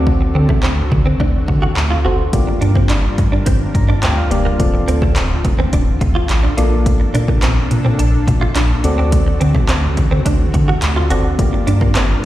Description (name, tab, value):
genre	dance-pop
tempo	106 BPM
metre	4/4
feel	straight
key	D minor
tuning	A4 = 440 Hz
part	soft electric-piano-like synth keys	accompaniment	0.0-12.0 s	Bb3 to Bb5	-22 LUFS	left 2 dB	chorus, plate reverb, slapback echo
part	soft supersaw	sustained chords	0.0-12.3 s	D3 to Bb4	-24 LUFS	equal	sidechain pumping, plate reverb
part	warm sub bass	bass	0.0-12.1 s	D1 to D3	-16 LUFS	equal	sidechain pumping
part	deep house drum kit	drums	0.1-12.1 s	handclaps, hi-hat, kick drum	-16 LUFS	equal	overdrive
part	direct-recorded clean electric guitar	riff	0.2-12.0 s	A3 to F#4	-23 LUFS	right 3 dB	ensemble chorus, slapback echo
room	light reverb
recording	live gig heard through the venue's PA, recital hall reverb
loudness	-13 LUFS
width	side -14 dB against mid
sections	0.0-12.3 A section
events	synth keys fill 3.5-4.6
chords	0.0 D7; 2.3 Gm7; 4.6 Dm7; 6.6 Bbmaj7; 8.8 D7; 11.4 Gm7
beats	| 0.07 0.64 1.20 1.77 | 2.33 2.90 3.46 4.03 | 4.60 5.16 5.73 6.29 | 6.86 7.43 7.99 8.56 | 9.12 9.69 10.26 10.82 | 11.39 11.96